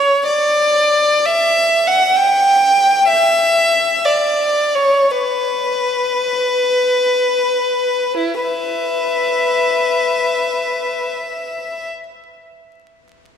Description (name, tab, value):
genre	classical, free, expressive piece for unaccompanied violin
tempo	free time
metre	none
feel	none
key	E dorian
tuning	A4 = 443 Hz
part	clear violin	solo	0.0-11.9 s	E4 to G5	-13 LUFS	left 1 dB	none
room	wet church reverb, RT60 3.0 s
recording	minimal, uncompressed stereo recording, vinyl crackle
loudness	-13 LUFS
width	side -8 dB against mid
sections	0.0-8.2 A section; 8.2-13.4 B section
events	slowing down 0.0-8.2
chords	none